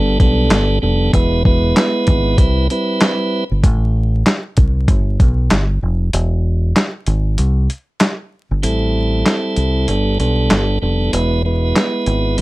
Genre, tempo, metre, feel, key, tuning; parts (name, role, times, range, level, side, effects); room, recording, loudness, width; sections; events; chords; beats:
hip hop, boom-bap hip-hop; 96 BPM; 4/4; swing 60% on 16ths; A minor; A4 = 438 Hz
tonewheel organ; accompaniment; 0.0-3.4, 8.6-12.4 s; G3 to B4; -17 LUFS; right 2 dB; overdrive, stopped rotary speaker, cassette tape, high-pass filter, low-pass filter, plate reverb
deep dub fingered electric bass; bass; 0.0-12.4 s; E1 to C2; -16 LUFS; equal
dusty soul sampler-style drum kit; drums; 0.2-12.4 s; handclaps, hi-hat, kick drum, snare drum; -14 LUFS; equal
light reverb; vinyl crackle; -13 LUFS; side -20 dB against mid
0.0-8.6 A section; 8.6-12.4 A section
break 6.1-8.6; kick muted 8.6-12.4
0.0 Gadd9; 1.1 E; 2.4 Cmaj7; 3.6 Am; 4.9 G; 6.1 E; 7.4 C5; 8.6 Am7; 9.9 Gadd9; 11.1 E
0.51 | 1.14 1.76 2.39 3.01 | 3.64 4.26 4.89 5.51 | 6.14 6.76 7.39 8.01 | 8.64 9.26 9.89 10.51 | 11.14 11.76 12.39